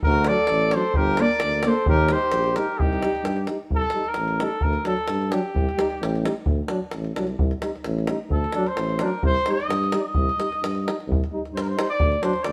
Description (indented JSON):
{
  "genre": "balkan folk, Balkan brass band",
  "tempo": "130 BPM",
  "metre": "2/4",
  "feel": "straight",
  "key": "C dorian sharp4",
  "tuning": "A4 = 440 Hz",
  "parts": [
    { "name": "mellow trumpet", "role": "melody", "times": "0.0-12.5 s", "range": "G4 to Eb5", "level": "-27 LUFS", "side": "equal", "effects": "none" },
    { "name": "davul", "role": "percussion", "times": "0.0-12.5 s", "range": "none", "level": "-29 LUFS", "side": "equal", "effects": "none" },
    { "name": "mellow flugelhorn", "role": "second line", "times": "0.1-3.5 s", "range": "Eb4 to Bb4", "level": "-31 LUFS", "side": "equal", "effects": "none" },
    { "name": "warm tuba", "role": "bass", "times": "0.1-12.5 s", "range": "G1 to G2", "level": "-28 LUFS", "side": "equal", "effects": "none" },
    { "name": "clear trombone", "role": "accompaniment", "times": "0.3-12.3 s", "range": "D4 to Eb4", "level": "-37 LUFS", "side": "equal", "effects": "none" },
    { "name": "dark euphonium", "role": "accompaniment", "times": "0.3-12.3 s", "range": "F#3 to Bb3", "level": "-30 LUFS", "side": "equal", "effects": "none" }
  ],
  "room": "moderate stone room reverb, RT60 1.0 s",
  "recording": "band playing live in one room",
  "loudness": "-23 LUFS",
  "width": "mono",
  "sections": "0.0-3.7 A section; 3.7-12.5 B section",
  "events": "trumpet solo 3.7-12.5",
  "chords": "0.0 D; 1.0 Gm; 1.9 Eb; 2.8 Cm; 4.6 D; 5.6 Cm; 6.5 D; 7.4 Cm; 8.3 D; 9.2 Cm; 12.0 D"
}